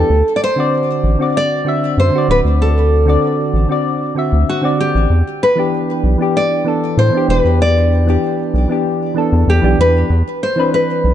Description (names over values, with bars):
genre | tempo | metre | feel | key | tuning
sunset chillout | 96 BPM | 4/4 | straight | E minor | A4 = 440 Hz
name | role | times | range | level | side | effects
nylon-string guitar | melody | 0.0-11.1 s | F#4 to D5 | -17 LUFS | equal | vintage 12-bit sampler grit, digital delay
soft electric-piano-like synth keys | accompaniment | 0.0-11.1 s | D3 to E5 | -17 LUFS | equal | chorus, auto-pan, digital delay
round analog bass | bass | 0.0-11.1 s | D1 to A2 | -13 LUFS | equal | none
room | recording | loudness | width
light reverb, small room ambience | dark, warm production, faint mains hum | -12 LUFS | side -11 dB against mid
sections
0.0-11.1 A section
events
none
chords
0.1 D7; 5.1 Em7; 10.1 Cmaj7/E